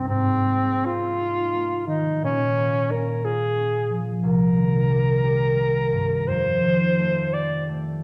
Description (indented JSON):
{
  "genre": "classical, impressionist duo for alto saxophone and harp",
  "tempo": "50-61 BPM (dotted quarters)",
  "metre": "6/8",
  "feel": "rubato",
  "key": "unclear",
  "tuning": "A4 = 440 Hz",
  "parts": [
    { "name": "warm alto saxophone", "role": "melody", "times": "0.0-7.7 s", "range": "C4 to D5", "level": "-25 LUFS", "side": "equal", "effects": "none" },
    { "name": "concert harp", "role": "accompaniment", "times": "0.0-8.0 s", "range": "C2 to G4", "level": "-25 LUFS", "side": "equal", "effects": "none" }
  ],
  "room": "wet scoring stage reverb, RT60 1.5 s",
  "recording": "heard from further back in the room",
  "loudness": "-22 LUFS",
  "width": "mono",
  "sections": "0.0-8.0 A section",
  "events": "none",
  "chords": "0.1 Ab69; 2.2 Bbm7; 4.2 Cm7; 6.3 F9",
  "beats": "| 0.06 1.20 | 2.22 3.23 | 4.23 5.25 | 6.27 7.33"
}